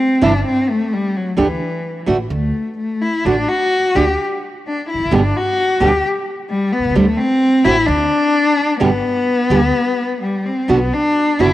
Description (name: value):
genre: tango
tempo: 129 BPM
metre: 4/4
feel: rubato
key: G major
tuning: A4 = 443 Hz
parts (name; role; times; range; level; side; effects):
- warm cello; second line; 0.0-11.5 s; E3 to G4; -16 LUFS; left 2 dB; cassette tape
- nylon-string guitar; accompaniment; 0.2-11.5 s; B2 to G4; -18 LUFS; right 2 dB; cassette tape
- upright bass; bass; 0.2-11.5 s; E1 to D2; -21 LUFS; right 1 dB; none
room: moderate lush hall reverb, RT60 2.4 s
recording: home recording on cassette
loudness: -14 LUFS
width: side -14 dB against mid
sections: 0.0-11.5 A section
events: cello solo 0.0-11.5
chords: 0.0 Cadd9; 1.4 D5; 5.1 G; 7.0 D7(no3); 7.9 N.C.; 8.8 G; 10.7 Bm